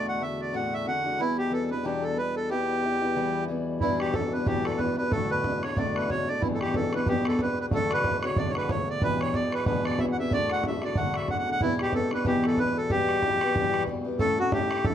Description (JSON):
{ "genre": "celtic folk, Celtic reel", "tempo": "185 BPM", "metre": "4/4", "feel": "swing 57% on 8ths", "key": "E minor", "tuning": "A4 = 440 Hz", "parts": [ { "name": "accordion", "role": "melody", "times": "0.0-14.9 s", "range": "E4 to F#5", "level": "-27 LUFS", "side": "right 1 dB", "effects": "none" }, { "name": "picked acoustic archtop guitar", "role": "accompaniment", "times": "0.0-14.9 s", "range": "D2 to A4", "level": "-29 LUFS", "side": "left 2 dB", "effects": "none" }, { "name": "hand-pumped harmonium", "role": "drone", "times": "0.0-14.2 s", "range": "E2 to B2", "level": "-36 LUFS", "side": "equal", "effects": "none" }, { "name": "bodhran", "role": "percussion", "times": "3.8-14.9 s", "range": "none", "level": "-30 LUFS", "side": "right 1 dB", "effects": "none" } ], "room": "moderate small room reverb, RT60 0.5 s", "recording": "dark, warm production", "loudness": "-24 LUFS", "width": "side -9 dB against mid", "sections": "0.0-3.8 A section; 3.8-14.2 A section", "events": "none", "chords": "0.0 D; 1.2 Em7; 2.5 Em; 3.8 Em7; 5.1 D; 6.4 Em7; 7.7 D; 9.0 Em7; 10.3 D; 11.6 Em7; 12.9 Em; 14.2 A", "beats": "0.21 0.54 0.87 | 1.19 1.52 1.85 2.17 | 2.50 2.83 3.15 3.48 | 3.81 4.13 4.46 4.79 | 5.11 5.44 5.76 6.09 | 6.42 6.74 7.07 7.39 | 7.72 8.04 8.37 8.69 | 9.02 9.34 9.66 9.99 | 10.31 10.63 10.96 11.28 | 11.61 11.93 12.25 12.58 | 12.90 13.22 13.55 13.87 | 14.19 14.52 14.84" }